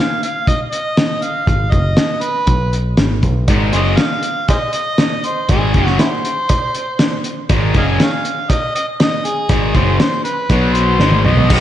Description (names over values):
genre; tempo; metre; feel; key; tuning
classic rock; 120 BPM; 4/4; straight; unclear; A4 = 438 Hz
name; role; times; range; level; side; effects
overdriven harmonica; melody; 0.0-11.6 s; Fb4 to Ab5; -20 LUFS; equal; slapback echo
cloth-damped thuddy drum kit; drums; 0.2-11.6 s; crash cymbal, hi-hat, kick drum, snare drum, toms; -16 LUFS; equal; none
overdriven picked electric bass; bass; 1.5-11.6 s; Gb1 to Cb2; -16 LUFS; equal; none
distorted electric guitar; riff; 3.5-11.6 s; Gb2 to F#4; -18 LUFS; left 1 dB; distortion, slapback echo
cowbell; percussion; 3.5-11.1 s; none; -29 LUFS; right 6 dB; slapback echo
room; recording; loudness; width
moderate lush hall reverb, RT60 1.6 s, studio ambience; big arena sound, nothing above 10.6 kHz; -13 LUFS; side -12 dB against mid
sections
0.0-11.5 A section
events
drum fill 11.0-11.5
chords
0.0 Ab5; 2.5 N.C.; 3.0 Ab; 10.5 B5; 11.0 B